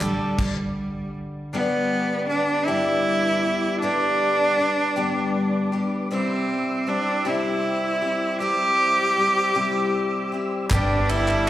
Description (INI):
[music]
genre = indie folk with a building arrangement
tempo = 52 BPM (dotted quarters)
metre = 6/8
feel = straight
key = G major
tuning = A4 = 440 Hz
[part]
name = bright cello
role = melody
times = 0.0-11.5 s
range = G3 to G4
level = -22 LUFS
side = right 1 dB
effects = tape echo
[part]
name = fingerpicked steel-string acoustic guitar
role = accompaniment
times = 0.0-2.7 s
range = D3 to G4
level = -33 LUFS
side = equal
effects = none
[part]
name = picked twelve-string acoustic guitar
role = accompaniment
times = 0.0-11.5 s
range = G2 to A4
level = -26 LUFS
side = left 4 dB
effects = slapback echo
[part]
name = mandolin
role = arpeggios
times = 0.0-0.4, 10.7-11.5 s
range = G4 to A4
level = -31 LUFS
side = right 1 dB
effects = none
[part]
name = upright bass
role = bass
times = 0.0-0.2, 10.7-11.5 s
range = G1 to A1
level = -25 LUFS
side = equal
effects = none
[part]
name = natural country drum kit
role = drums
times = 0.0-0.6, 10.7-11.5 s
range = crash cymbal, hi-hat, kick drum, ride cymbal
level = -26 LUFS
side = equal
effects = none
[part]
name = group handclap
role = percussion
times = 0.0-0.2, 10.7-11.5 s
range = none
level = -30 LUFS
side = left 1 dB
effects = none
[part]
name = mellow tonewheel organ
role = sustained chords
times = 1.5-11.5 s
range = B4 to E6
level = -33 LUFS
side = equal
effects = slow rotary speaker
[part]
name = clear trumpet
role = second line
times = 10.7-11.5 s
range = G3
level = -30 LUFS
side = equal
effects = slapback echo, tape echo
[part]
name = tube shaker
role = percussion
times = 10.7-10.9 s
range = none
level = -40 LUFS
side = left 1 dB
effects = none
[sound]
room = light reverb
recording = live gig heard through the venue's PA, recital hall reverb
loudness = -20 LUFS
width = side -13 dB against mid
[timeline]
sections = 0.0-1.5 A section; 1.5-11.5 B section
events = stop 0.4-1.5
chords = 0.0 Dsus4; 1.5 G; 6.1 C; 10.7 G